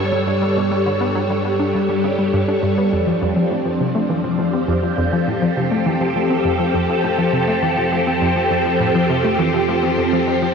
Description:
ambient, sequencer-driven space music; 102 BPM; 4/4; straight; F major; A4 = 440 Hz
phased string machine; sustained chords; 0.0-10.5 s; F3 to C#5; -17 LUFS; equal; ensemble chorus, phaser, shimmer reverb
analog pluck; riff; 0.0-10.5 s; F2 to D4; -21 LUFS; left 1 dB; chorus, ping-pong delay
analog drone; bass; 0.0-10.5 s; F2 to G2; -30 LUFS; equal; chorus
wind-like tuned noise texture; texture; 0.0-3.0 s; B4 to E6; -35 LUFS; right 1 dB; built-in reverb, shimmer reverb
wet huge ambient reverb, RT60 6.9 s; worn, warbling old tape, cassette tape, warbly pitch drift; -16 LUFS; side -6 dB against mid
0.0-2.9 A section; 2.9-10.5 B section
filter sweep on synth arpeggio sound 0.0-2.9; fade-in on synth drone 2.9-10.5
0.0 Gadd9; 2.9 Fadd9
| 0.57 1.15 1.74 2.33 | 2.92 3.51 4.09 4.68 | 5.27 5.86 6.45 7.04 | 7.62 8.21 8.80 9.39 | 9.98

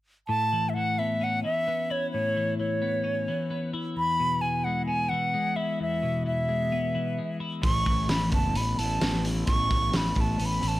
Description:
quiet-loud alternative rock; 130 BPM; 4/4; straight; A major; A4 = 440 Hz
silver concert flute; melody; 0.3-10.8 s; C#5 to C#6; -28 LUFS; right 1 dB
twelve-string electric guitar; arpeggios; 0.3-10.8 s; E2 to E4; -30 LUFS; left 2 dB; wide subtle chorus
fuzz fingered electric bass; bass; 7.6-10.8 s; F#1 to A1; -29 LUFS; equal; overdrive
loose indie drum kit; drums; 7.6-10.7 s; hi-hat, kick drum, snare drum; -28 LUFS; equal
small room ambience; -24 LUFS; side -16 dB against mid
0.3-10.8 A section
0.3 Aadd9; 4.0 E; 7.6 Aadd9
| 0.28 0.74 1.20 1.66 | 2.12 2.58 3.04 3.50 | 3.96 4.42 4.88 5.34 | 5.80 6.26 6.72 7.18 | 7.64 8.10 8.56 9.02 | 9.48 9.94 10.40

